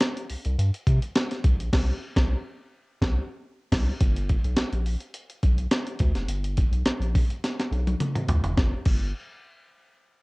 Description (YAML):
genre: funk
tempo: 105 BPM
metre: 4/4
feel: straight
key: unclear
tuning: A4 = 439 Hz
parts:
  - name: breakbeat sampler-style drum kit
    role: drums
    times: 0.0-9.0 s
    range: crash cymbal, hi-hat, kick drum, snare drum, toms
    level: -24 LUFS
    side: equal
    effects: cassette tape
  - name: round analog bass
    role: bass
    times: 0.3-9.1 s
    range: F1 to C3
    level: -25 LUFS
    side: equal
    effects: tube saturation
room: little or no reverb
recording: home recording on cassette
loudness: -23 LUFS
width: side -27 dB against mid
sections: 0.0-4.0 A section; 4.0-8.6 B section; 8.6-10.2 C section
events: band accent 1.7-4.0; drum fill 7.4-8.6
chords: none